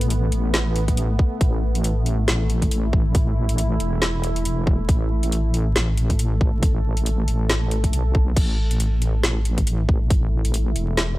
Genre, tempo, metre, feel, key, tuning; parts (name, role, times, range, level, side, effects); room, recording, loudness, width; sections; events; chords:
deep dubstep; 138 BPM; 4/4; swing 58% on 16ths, half-time; A4 = 440 Hz
deep dark ambient pad; sustained chords; 0.0-11.2 s; A3 to A4; -29 LUFS; equal; chorus, built-in reverb
deep soft wobble bass; bass; 0.0-11.2 s; E1 to B1; -21 LUFS; equal; chorus
garage drum kit; drums; 0.0-11.1 s; crash cymbal, hi-hat, snare drum; -25 LUFS; equal
electronic kick drum; drums; 0.9-10.2 s; -19 LUFS; equal
little or no reverb; dry, gritty hardware recording, vinyl crackle; -18 LUFS; side -18 dB against mid
0.0-11.2 A section
0.0 Asus2